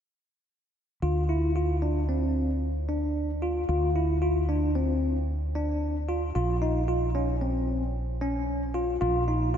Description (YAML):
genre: progressive instrumental, progressive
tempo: 113 BPM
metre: 5/4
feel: straight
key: D minor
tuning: A4 = 444 Hz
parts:
  - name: bell-like tine electric piano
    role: arpeggios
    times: 1.0-9.6 s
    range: C4 to F4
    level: -28 LUFS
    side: left 1 dB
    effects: wide subtle chorus
  - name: mellow fretless electric bass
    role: bass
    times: 1.0-9.6 s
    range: Bb1 to D2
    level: -28 LUFS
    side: equal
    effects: none
room: wet lush hall reverb, RT60 2.8 s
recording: dreamy mix soaked in reverb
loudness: -25 LUFS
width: side -8 dB against mid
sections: 1.0-9.6 A section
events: none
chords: 1.0 Dm7; 6.4 Bbm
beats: | 1.02 1.56 2.09 2.62 3.16 | 3.69 4.22 4.76 5.29 5.82 | 6.36 6.89 7.42 7.95 8.49 | 9.02 9.55